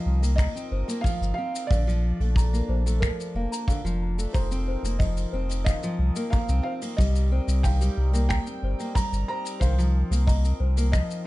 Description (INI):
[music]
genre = folktronica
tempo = 91 BPM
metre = 4/4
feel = straight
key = unclear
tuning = A4 = 439 Hz
[part]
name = felt-muted upright piano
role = melody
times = 0.0-11.3 s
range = Bb4 to Bb5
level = -35 LUFS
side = right 2 dB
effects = ping-pong delay, plate reverb
[part]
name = small celesta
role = second line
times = 0.0-11.3 s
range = C5 to Bb5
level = -39 LUFS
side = left 2 dB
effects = ping-pong delay, plate reverb
[part]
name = hand-pumped harmonium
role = sustained chords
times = 0.0-11.3 s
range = F3 to Bb4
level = -40 LUFS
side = right 2 dB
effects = plate reverb
[part]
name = fingerpicked steel-string acoustic guitar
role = arpeggios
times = 0.0-11.2 s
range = D3 to C4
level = -32 LUFS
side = left 1 dB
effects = ping-pong delay, plate reverb
[part]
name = warm sub bass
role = bass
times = 0.1-11.0 s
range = F1 to C2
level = -23 LUFS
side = equal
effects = none
[part]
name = soft brush drum kit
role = drums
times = 0.2-11.2 s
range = finger snaps, hi-hat, shaker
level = -38 LUFS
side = left 2 dB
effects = none
[part]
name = kick drum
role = drums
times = 0.4-11.1 s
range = none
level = -24 LUFS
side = equal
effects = none
[sound]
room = little or no reverb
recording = dark, warm production, nothing above 10.8 kHz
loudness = -22 LUFS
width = side -18 dB against mid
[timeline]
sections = 0.0-11.3 A section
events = none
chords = 0.0 Cm7; 1.7 Bbmaj7; 4.3 F7sus4; 7.0 Cm7